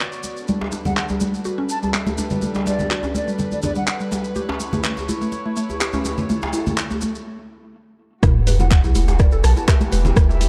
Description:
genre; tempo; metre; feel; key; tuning
afro house; 124 BPM; 4/4; swing 54% on 16ths; unclear; A4 = 439 Hz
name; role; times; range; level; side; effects
dark chamber string section; sustained chords; 0.0-10.5 s; E3 to D5; -33 LUFS; equal; sidechain pumping
deep house drum kit; drums; 0.0-10.5 s; handclaps, hi-hat, rim click; -27 LUFS; equal; overdrive, low-pass filter on snare, low-pass filter on hats, low-pass filter on room
maracas; percussion; 0.1-10.5 s; none; -38 LUFS; equal; none
congas; percussion; 0.2-10.5 s; none; -30 LUFS; equal; none
mallet-like synth pluck; arpeggios; 0.5-10.5 s; G3 to D5; -28 LUFS; equal; lush chorus, sidechain pumping, tape echo
djembe; percussion; 0.6-10.4 s; none; -32 LUFS; equal; none
concert flute; melody; 0.9-4.0, 8.6-10.5 s; D5 to A5; -32 LUFS; equal; tape echo
warm sub bass; bass; 8.2-10.5 s; E1 to B1; -20 LUFS; equal; sidechain pumping
electronic kick drum; drums; 8.2-10.3 s; none; -17 LUFS; equal; none
sub drop; sound effects; 8.2-10.2 s; none; -27 LUFS; equal; none
room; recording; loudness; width
light reverb, small room ambience; dark, warm production; -20 LUFS; mono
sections
0.0-8.2 A section; 8.2-10.5 B section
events
break 7.3-8.2; drop 8.2-10.5; impact 8.2-10.2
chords
0.5 Gadd9; 4.4 A; 8.2 Emadd9

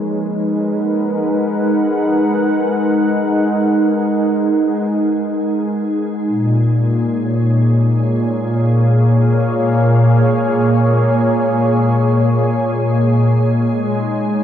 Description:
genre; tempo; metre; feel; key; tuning
ambient; free time; none; none; G# dorian; A4 = 441 Hz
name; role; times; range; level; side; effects
warm analog pad; sustained chords; 0.0-14.4 s; A#2 to F#5; -13 LUFS; equal; wide subtle chorus
organ-like drone; drone; 0.0-14.4 s; G#3 to G#4; -30 LUFS; equal; ensemble chorus, built-in reverb
room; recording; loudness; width
wet huge ambient reverb, RT60 7.6 s; dark, warm production; -13 LUFS; side -10 dB against mid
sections
0.0-14.4 A section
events
fade-in on synth drone 0.0-14.4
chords
0.0 G#m9; 6.3 A#m7; 13.7 G#5

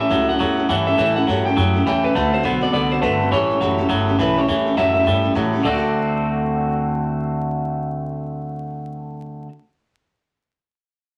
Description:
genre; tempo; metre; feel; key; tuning
rock; 206 BPM; 4/4; swing 60% on 8ths; D mixolydian; A4 = 443 Hz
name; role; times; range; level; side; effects
electric guitar through a small old amp; melody; 0.0-9.4 s; B4 to G5; -24 LUFS; equal; none
picked steel-string acoustic guitar; accompaniment; 0.0-9.5 s; A2 to A4; -26 LUFS; equal; none
twangy electric guitar; riff; 0.0-9.5 s; A2 to F#4; -23 LUFS; equal; none
upright bass; bass; 0.0-9.4 s; F#1 to A2; -28 LUFS; equal; none
room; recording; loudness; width
wet studio reverb, RT60 0.5 s; vinyl crackle; -19 LUFS; mono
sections
0.0-4.5 A section; 4.5-5.6 B section; 5.6-8.0 C section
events
none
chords
0.0 A7; 2.1 D7; 3.3 A7; 5.6 D7

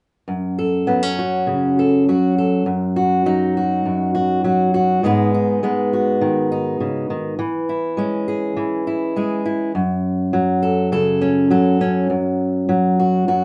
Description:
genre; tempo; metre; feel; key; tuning
folk; 102 BPM; 4/4; straight; F# dorian; A4 = 439 Hz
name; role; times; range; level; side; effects
fingerpicked steel-string acoustic guitar; solo; 0.3-13.4 s; F#2 to A4; -19 LUFS; equal; none
room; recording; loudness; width
moderate small room ambience, RT60 0.5 s; band playing live in one room, nothing above 10.9 kHz; -19 LUFS; mono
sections
0.3-9.7 A section; 9.7-13.4 B section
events
none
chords
0.3 F#m; 2.7 D#m/F#; 5.0 G#m; 7.4 E6; 9.7 F#m; 12.1 N.C.

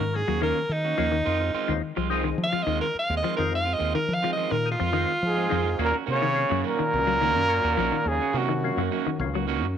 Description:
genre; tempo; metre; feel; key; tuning
afrobeat; 106 BPM; 4/4; straight; Eb dorian; A4 = 440 Hz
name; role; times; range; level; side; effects
edgy alto saxophone; melody; 0.0-5.8 s; Eb4 to F5; -26 LUFS; right 1 dB; none
semi-hollow electric guitar; arpeggios; 0.0-9.5 s; Eb3 to Gb3; -31 LUFS; left 11 dB; none
electric guitar at the edge of break-up; stabs; 0.0-9.7 s; Eb3 to Gb4; -31 LUFS; right 12 dB; none
fingered electric bass; bass; 0.0-9.8 s; Bb1 to F3; -29 LUFS; equal; none
percussive tonewheel organ; accompaniment; 0.1-9.4 s; Gb3 to Ab4; -34 LUFS; left 12 dB; chorus vibrato, slow rotary speaker
breathy trumpet; melody; 5.3-9.2 s; Gb4 to Db5; -25 LUFS; equal; none
brilliant trombone; second line; 5.3-9.2 s; Gb2 to Db3; -31 LUFS; right 10 dB; none
room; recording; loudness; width
light reverb, studio ambience; 1960s-style stereo with parts hard left and right; -22 LUFS; side -8 dB against mid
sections
0.0-5.8 A section; 5.8-9.8 B section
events
alto saxophone solo 0.0-5.8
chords
0.0 Ebm7; 1.3 Fm7; 5.8 Ebm7

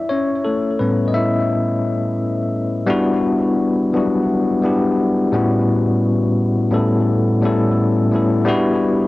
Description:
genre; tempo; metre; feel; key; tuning
hip hop; 86 BPM; 4/4; swing 57% on 16ths; E dorian; A4 = 441 Hz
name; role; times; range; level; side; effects
bell-like tine electric piano; solo; 0.0-9.1 s; A2 to E5; -15 LUFS; left 1 dB; slow stereo tremolo, cassette tape, analog delay
room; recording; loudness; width
light reverb; home recording on cassette; -15 LUFS; side -18 dB against mid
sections
0.0-2.9 A section; 2.9-9.1 B section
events
tine electric piano solo 0.0-2.9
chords
0.0 A9; 2.9 Em9; 5.3 A13; 8.5 Em9

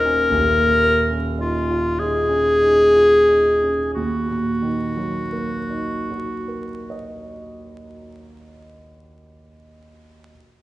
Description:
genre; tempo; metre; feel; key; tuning
classical, impressionist duo for clarinet and grand piano; 29-40 BPM (dotted quarters); 6/8; rubato; Eb minor; A4 = 440 Hz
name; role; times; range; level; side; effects
warm clarinet; melody; 0.0-8.0 s; F4 to Bb4; -17 LUFS; left 1 dB; none
dark concert grand piano; accompaniment; 0.0-10.3 s; Eb1 to Eb5; -25 LUFS; right 2 dB; none
room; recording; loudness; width
wet recital hall reverb, RT60 1.4 s; recorded in a church or concert hall, vinyl crackle, nothing above 10.5 kHz; -16 LUFS; side -16 dB against mid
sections
0.0-4.0 A section; 4.0-8.0 B section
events
slowing down 0.0-4.0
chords
0.3 Db69/Eb; 4.0 Ebm

